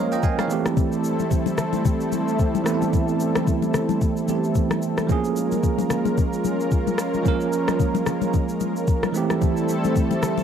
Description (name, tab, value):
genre	amapiano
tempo	111 BPM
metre	4/4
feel	swing 58% on 16ths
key	unclear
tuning	A4 = 440 Hz
part	bell-like tine electric piano	accompaniment	0.0-10.4 s	E3 to Ab5	-24 LUFS	right 7 dB	fast stereo tremolo, cassette tape
part	lush unison pad	sustained chords	0.0-10.4 s	G3 to Bb4	-25 LUFS	left 2 dB	chorus, sidechain pumping, cassette tape
part	smooth R&B drum kit	drums	0.1-10.4 s	kick drum, rim click, shaker	-24 LUFS	left 1 dB	cassette tape
part	congas	percussion	0.4-10.4 s	none	-28 LUFS	left 12 dB	none
room	moderate studio reverb, RT60 0.6 s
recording	home recording on cassette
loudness	-20 LUFS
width	side -8 dB against mid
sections	0.0-10.4 A section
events	none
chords	0.5 Am7; 5.1 Bbm7; 9.1 Am7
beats	0.23 | 0.77 1.31 1.85 2.39 | 2.93 3.47 4.01 4.55 | 5.09 5.63 6.17 6.71 | 7.26 7.80 8.34 8.88 | 9.42 9.96